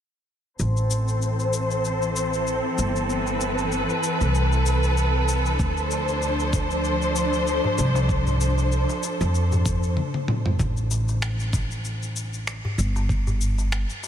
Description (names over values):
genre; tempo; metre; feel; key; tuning
organic downtempo; 96 BPM; 4/4; swing 56% on 16ths; A minor; A4 = 439 Hz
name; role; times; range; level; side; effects
warm studio string section; sustained chords; 0.6-9.9 s; E3 to C5; -25 LUFS; equal; sidechain pumping, low-pass filter
upright bass; bass; 0.6-13.8 s; G1 to F2; -24 LUFS; equal; sidechain pumping
dusty soul sampler-style drum kit; drums; 0.6-14.1 s; finger snaps, shaker, toms; -30 LUFS; left 2 dB; overdrive
electronic kick drum; drums; 5.6-13.2 s; none; -25 LUFS; equal; overdrive
darbuka; percussion; 6.1-14.1 s; none; -33 LUFS; left 1 dB; none
room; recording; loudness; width
moderate huge ambient reverb, RT60 7.7 s; dreamy mix soaked in reverb; -21 LUFS; side -9 dB against mid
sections
0.6-10.6 A section; 10.6-14.1 B section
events
drum fill 10.0-10.6; stop 10.0-10.6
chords
0.6 Am; 5.6 Dm7; 10.6 N.C.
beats
| 0.59 1.22 1.84 2.47 | 3.09 3.72 4.34 4.97 | 5.59 6.22 6.84 7.47 | 8.09 8.72 9.34 9.97 | 10.59 11.22 11.84 12.47 | 13.09 13.72